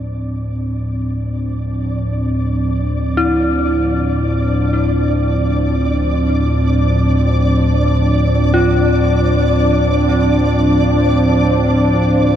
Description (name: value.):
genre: dark ambient drone.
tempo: free time.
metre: none.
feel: none.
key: D minor.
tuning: A4 = 439 Hz.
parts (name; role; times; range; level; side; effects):
sweeping resonant pad; sustained chords; 0.0-12.4 s; F3 to D4; -18 LUFS; right 1 dB; lush chorus.
deep rumbling drone; drone; 0.0-12.4 s; D2 to A2; -16 LUFS; equal; built-in reverb.
flickering grainy texture; texture; 0.0-12.4 s; D5; -23 LUFS; left 1 dB; built-in reverb.
dark detuned synth bell; arpeggios; 3.2-12.4 s; E4 to F4; -21 LUFS; left 1 dB; chorus, tremolo, tape echo.
room: moderate huge ambient reverb, RT60 7.2 s.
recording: none.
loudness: -13 LUFS.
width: side -10 dB against mid.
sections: 0.0-12.4 A section.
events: fade-in on analog synth pad 0.0-12.4; fade-in on synth texture 0.0-12.4.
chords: 0.0 Dmadd9.